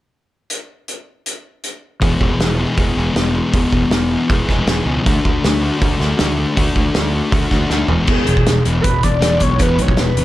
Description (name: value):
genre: indie rock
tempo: 158 BPM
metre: 4/4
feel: straight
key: E mixolydian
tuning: A4 = 440 Hz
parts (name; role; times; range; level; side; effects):
- loose indie drum kit; drums; 0.5-10.2 s; crash cymbal, hi-hat, kick drum, snare drum, toms; -18 LUFS; equal; none
- thick fuzz guitar; riff; 2.0-10.2 s; E2 to G#4; -18 LUFS; left 2 dB; distortion
- fuzz fingered electric bass; bass; 2.0-10.2 s; E1 to D2; -20 LUFS; right 1 dB; overdrive
- overdriven synth lead; melody; 8.1-10.2 s; G#4 to D5; -19 LUFS; right 1 dB; phaser
room: light reverb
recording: none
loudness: -13 LUFS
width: side -15 dB against mid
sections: 0.5-2.0 A section; 2.0-8.1 B section; 8.1-10.2 C section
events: drum fill 7.7-8.1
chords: 0.5 N.C.; 2.0 E; 5.1 D; 7.9 E